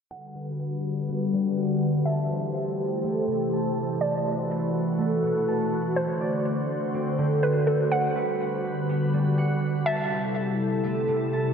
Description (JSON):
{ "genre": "hip hop", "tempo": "123 BPM", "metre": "4/4", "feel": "half-time", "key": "G major", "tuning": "A4 = 440 Hz", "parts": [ { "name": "hollow square pluck", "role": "melody", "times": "0.1-10.8 s", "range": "A4 to F#5", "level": "-30 LUFS", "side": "right 1 dB", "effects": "chorus, low-pass filter, analog delay" }, { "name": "glassy FM pad", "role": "sustained chords", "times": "0.3-11.5 s", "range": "C3 to C5", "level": "-25 LUFS", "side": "left 1 dB", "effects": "ensemble chorus, built-in reverb, low-pass filter" }, { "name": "concert harp", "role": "arpeggios", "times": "0.1-11.5 s", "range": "B2 to C6", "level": "-30 LUFS", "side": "right 2 dB", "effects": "low-pass filter, analog delay" } ], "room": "wet lush hall reverb, RT60 2.6 s", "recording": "dreamy mix soaked in reverb", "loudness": "-23 LUFS", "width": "side -7 dB against mid", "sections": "0.1-11.5 A section", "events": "filter sweep 0.1-11.5", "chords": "0.1 Gmaj7; 2.1 C6; 4.0 B7sus4; 6.0 D7; 7.9 Gmaj7; 9.9 C6" }